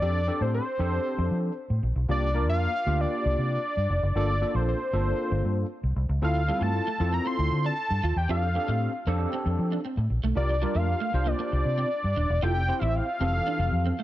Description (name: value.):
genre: funk.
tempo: 116 BPM.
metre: 4/4.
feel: straight.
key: F major.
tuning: A4 = 440 Hz.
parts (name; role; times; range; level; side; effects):
fat analog lead; melody; 0.0-14.0 s; C5 to C6; -29 LUFS; equal; chorus.
overdriven tine electric piano; accompaniment; 0.0-13.9 s; E3 to C5; -32 LUFS; left 1 dB; ensemble chorus.
vintage muted fingered electric bass; bass; 0.0-13.9 s; Eb1 to F3; -26 LUFS; equal; none.
electric guitar at the edge of break-up; riff; 6.4-14.0 s; G3 to F4; -35 LUFS; right 5 dB; ensemble chorus.
room: little or no reverb.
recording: none.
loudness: -24 LUFS.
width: side -14 dB against mid.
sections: 0.0-14.0 A section.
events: none.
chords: 0.0 F6; 2.1 C9sus4; 4.2 Gm9; 6.2 Dm7; 8.3 F6; 10.4 C9sus4; 12.4 Fmaj9.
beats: | 0.02 0.53 1.05 1.57 | 2.08 2.60 3.12 3.64 | 4.15 4.67 5.19 5.71 | 6.22 6.74 7.26 7.78 | 8.29 8.81 9.33 9.84 | 10.36 10.88 11.40 11.91 | 12.43 12.95 13.46 13.98.